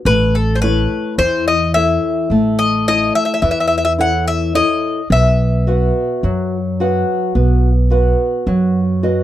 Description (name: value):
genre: greek folk, Greek bouzouki band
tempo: 107 BPM (eighths)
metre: 9/8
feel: straight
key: unclear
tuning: A4 = 439 Hz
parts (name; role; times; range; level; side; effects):
- Greek bouzouki; melody; 0.1-9.0 s; A4 to F#5; -17 LUFS; left 2 dB; none
- nylon-string guitar; accompaniment; 0.1-9.2 s; E3 to F#5; -18 LUFS; equal; none
- upright bass; bass; 0.1-9.2 s; A1 to F#2; -17 LUFS; equal; none
room: little or no reverb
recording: dry, close 1970s-style studio recording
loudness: -13 LUFS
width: side -12 dB against mid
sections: 0.0-9.2 A section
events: none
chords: 0.1 A; 5.1 B5